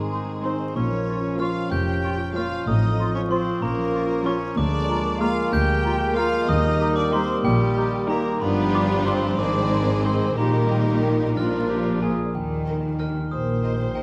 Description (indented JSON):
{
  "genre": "cinematic, playful, whimsical film cue",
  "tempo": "62 BPM (dotted quarters)",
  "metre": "6/8",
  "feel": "straight",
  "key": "Eb major from 4.6 s",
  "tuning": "A4 = 439 Hz",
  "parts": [
    { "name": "glockenspiel with soft plastic mallets", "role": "melody", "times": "0.0-14.0 s", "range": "G5 to G6", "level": "-33 LUFS", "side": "equal", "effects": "none" },
    { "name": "rich chamber violin section", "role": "melody", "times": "0.0-14.0 s", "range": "G4 to G5", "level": "-35 LUFS", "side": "equal", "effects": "none" },
    { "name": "dark cor anglais", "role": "second line", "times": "0.0-11.3 s", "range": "G3 to G4", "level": "-33 LUFS", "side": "equal", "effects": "none" },
    { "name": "mellow French horn section", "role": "sustained chords", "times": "0.0-12.0 s", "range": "Eb3 to Eb4", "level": "-30 LUFS", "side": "equal", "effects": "none" },
    { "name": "concert harp", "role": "arpeggios", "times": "0.0-14.0 s", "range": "G2 to Db6", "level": "-31 LUFS", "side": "equal", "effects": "none" },
    { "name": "rich chamber double bass section", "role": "bass", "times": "0.0-14.0 s", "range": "F1 to Eb2", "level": "-30 LUFS", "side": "equal", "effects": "none" },
    { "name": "rich symphonic cello section", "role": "bass", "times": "0.0-14.0 s", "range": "D2 to Eb3", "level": "-31 LUFS", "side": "equal", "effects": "none" },
    { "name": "mellow hollow silver concert flute", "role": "second line", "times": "0.1-12.1 s", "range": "F5 to D6", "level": "-37 LUFS", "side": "equal", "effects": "none" },
    { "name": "warm clarinet", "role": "second line", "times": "0.1-12.3 s", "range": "Eb4 to Ab4", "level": "-37 LUFS", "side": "equal", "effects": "none" },
    { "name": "rich chamber violin section", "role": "second line", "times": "0.4-14.0 s", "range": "Db4 to Db5", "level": "-35 LUFS", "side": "equal", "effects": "none" },
    { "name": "rich chamber viola section", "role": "accompaniment", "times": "0.4-14.0 s", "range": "Eb3 to C5", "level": "-31 LUFS", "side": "equal", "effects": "none" }
  ],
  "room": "moderate scoring stage reverb, RT60 1.7 s",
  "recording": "vinyl crackle",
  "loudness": "-23 LUFS",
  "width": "mono",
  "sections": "0.0-12.3 A section; 12.3-14.0 B section",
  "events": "none",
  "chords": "0.0 Ab; 0.8 Bbm; 2.7 F7/A; 3.6 Bbm; 4.6 Bb7/D; 6.5 Eb; 8.4 G7; 9.4 Ab; 10.4 Eb/Bb; 11.4 Bb; 12.3 Eb"
}